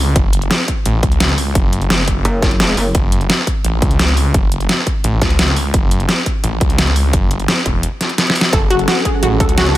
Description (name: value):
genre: dark technical drum and bass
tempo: 172 BPM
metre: 4/4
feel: straight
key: F# minor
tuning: A4 = 440 Hz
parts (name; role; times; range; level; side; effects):
- snarling distorted saw bass; bass; 0.0-9.8 s; E1 to C#2; -16 LUFS; equal; distortion, overdrive
- dubstep drum kit; drums; 0.2-9.8 s; hi-hat, snare drum; -17 LUFS; equal; overdrive
- electronic kick drum; drums; 0.2-9.5 s; none; -17 LUFS; equal; overdrive
- metallic wobble bass; bass; 2.3-2.9 s; F#1; -16 LUFS; equal; chorus
- sweeping resonant pad; sustained chords; 8.5-9.8 s; F#3 to A4; -20 LUFS; equal; chorus, sidechain pumping
- analog pluck; arpeggios; 8.5-9.8 s; F#4 to A4; -17 LUFS; equal; chorus, cassette tape, sidechain pumping, digital delay
room: little or no reverb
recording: none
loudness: -12 LUFS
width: side -15 dB against mid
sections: 0.0-9.8 A section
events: drum fill 8.2-8.5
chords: 0.0 F#madd9